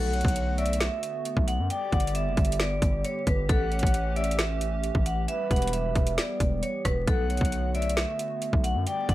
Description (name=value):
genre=hip hop, trap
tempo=134 BPM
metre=4/4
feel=half-time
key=B minor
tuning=A4 = 440 Hz
part: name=vibraphone with hard mallets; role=melody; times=0.0-9.1 s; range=A4 to G5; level=-31 LUFS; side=right 1 dB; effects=low-pass filter
part: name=breathy flute-like synth lead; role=second line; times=0.0-9.1 s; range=B4 to F#5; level=-34 LUFS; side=left 2 dB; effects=chorus, digital delay
part: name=hollow soft pad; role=sustained chords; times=0.0-9.1 s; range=D3 to G4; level=-36 LUFS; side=equal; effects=chorus
part: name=distorted 808-style bass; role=bass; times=0.0-9.1 s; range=E1 to F#2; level=-29 LUFS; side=equal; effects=distortion
part: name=trap drum kit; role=drums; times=0.1-9.1 s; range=hi-hat, kick drum, rim click, snare drum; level=-27 LUFS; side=equal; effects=none
room=little or no reverb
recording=vinyl crackle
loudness=-24 LUFS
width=side -15 dB against mid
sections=0.0-9.1 A section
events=none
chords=0.0 Bm7; 1.7 G; 3.5 A7; 5.3 Em; 7.1 Bm7